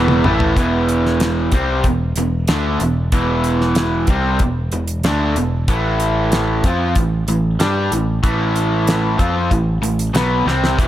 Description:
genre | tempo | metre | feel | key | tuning
classic rock | 94 BPM | 4/4 | straight | E minor | A4 = 440 Hz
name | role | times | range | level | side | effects
raw garage guitar | riff | 0.0-10.9 s | E2 to G4 | -18 LUFS | equal | overdrive
modern bright picked electric bass | bass | 0.0-10.9 s | E1 to G2 | -20 LUFS | equal | none
damped 70s drum kit | drums | 0.1-10.9 s | hi-hat, kick drum, snare drum, toms | -19 LUFS | equal | none
room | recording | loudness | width
small room ambience | none | -15 LUFS | side -13 dB against mid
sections
0.6-10.9 A section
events
drum fill 0.0-0.6, 10.5-10.8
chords
0.0 E5; 0.6 E7(no3); 5.7 A5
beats
| 0.57 1.21 1.85 2.49 | 3.13 3.77 4.41 5.05 | 5.69 6.33 6.96 7.60 | 8.24 8.88 9.52 10.15 | 10.79

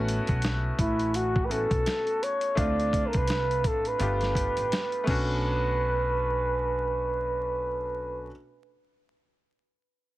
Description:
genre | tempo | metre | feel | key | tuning
hip hop, jazz-hop | 84 BPM | 4/4 | swing 60% on 16ths | unclear | A4 = 440 Hz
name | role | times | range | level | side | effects
bright concert grand piano | accompaniment | 0.0-8.3 s | A3 to G4 | -34 LUFS | left 1 dB | plate reverb
upright bass | bass | 0.0-8.3 s | G1 to D2 | -30 LUFS | equal | none
dusty soul sampler-style drum kit | drums | 0.1-5.3 s | crash cymbal, hi-hat, kick drum, snare drum | -30 LUFS | equal | none
breathy flugelhorn | melody | 0.8-8.3 s | E4 to D5 | -28 LUFS | right 1 dB | none
room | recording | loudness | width
light reverb | heavily compressed radio sound, vinyl crackle | -25 LUFS | side -16 dB against mid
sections
0.0-5.4 A section; 5.4-8.3 B section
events
none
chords
0.0 A69; 2.6 Dm7; 4.0 G9; 5.1 Bm9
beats
0.43 1.14 1.86 | 2.57 3.29 4.00 4.71 | 5.43 6.14 6.86 7.57

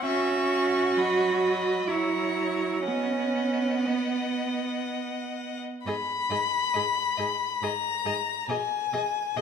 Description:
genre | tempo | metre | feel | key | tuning
classical, slow romantic movement for string quartet | 59-70 BPM | 3/4 | rubato | B major, G# minor from 5.8 s | A4 = 440 Hz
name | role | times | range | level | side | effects
rich violin | second line | 0.0-9.4 s | C#5 to E5 | -35 LUFS | left 4 dB | none
rich viola | accompaniment | 0.0-9.4 s | F#3 to G#4 | -30 LUFS | right 3 dB | none
rich violin | melody | 0.1-9.4 s | D#5 to C#6 | -29 LUFS | left 7 dB | none
rich cello | bass | 0.1-9.4 s | G#2 to F#4 | -28 LUFS | right 4 dB | none
room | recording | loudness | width
moderate recital hall reverb, RT60 1.5 s | none | -25 LUFS | side -7 dB against mid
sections
0.0-5.8 A section; 5.8-9.4 B section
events
none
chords
0.1 C#m; 1.0 B/F#; 1.9 F#7; 2.9 B; 5.8 G#m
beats
| 0.05 0.96 1.88 | 2.85 3.86 4.87 | 5.85 6.75 7.62 | 8.50 9.37

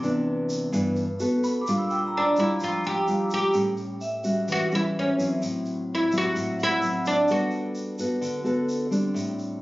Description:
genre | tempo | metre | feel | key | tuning
bossa nova | 128 BPM | 4/4 | straight | G major | A4 = 440 Hz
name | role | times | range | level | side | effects
nylon-string guitar | accompaniment | 0.0-9.6 s | G2 to A4 | -26 LUFS | equal | none
tube shaker | percussion | 0.0-9.6 s | none | -42 LUFS | right 1 dB | none
vibraphone with medium hard mallets | accompaniment | 1.4-7.5 s | E5 to E6 | -30 LUFS | equal | none
oud | melody | 2.2-8.2 s | C#4 to G4 | -25 LUFS | equal | none
room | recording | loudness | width
light reverb | recorded on a phone in the room, studio reverb, compression, nothing above 7.5 kHz | -23 LUFS | side -18 dB against mid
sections
0.0-1.7 A section; 1.7-9.6 B section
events
none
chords
0.0 Cmaj9; 1.2 B7(no3); 1.7 Bb6; 3.5 A6; 5.4 Am6; 7.3 Gmaj9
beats
0.26 0.73 1.20 | 1.67 2.13 2.60 3.07 | 3.54 4.01 4.48 4.95 | 5.42 5.88 6.35 6.82 | 7.29 7.76 8.23 8.70 | 9.16

